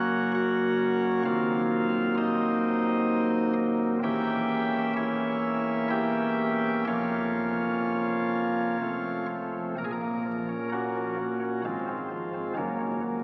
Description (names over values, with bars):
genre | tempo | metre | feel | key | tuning
classical, chorale-style piece for pipe organ | 64 BPM | 3/4 | uneven beats, rubato | Bb minor | A4 = 440 Hz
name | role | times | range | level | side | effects
chamber organ, cornet | solo | 0.0-13.2 s | Eb1 to G5 | -28 LUFS | equal | none
room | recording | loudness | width
wet church reverb, RT60 3.9 s | very old 78 rpm record, vinyl crackle | -28 LUFS | mono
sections
0.0-9.8 A section; 9.8-13.2 B section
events
none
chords
0.0 Gb; 1.3 Cm7b5/Eb; 4.0 Edim7; 6.9 Bbm/F; 8.8 F; 9.8 Bbm; 11.6 Fm/Ab; 12.6 Gb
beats
0.34 | 1.26 2.17 3.11 | 4.03 4.96 5.91 | 6.88 7.85 8.82 | 9.78 10.71 11.64 | 12.57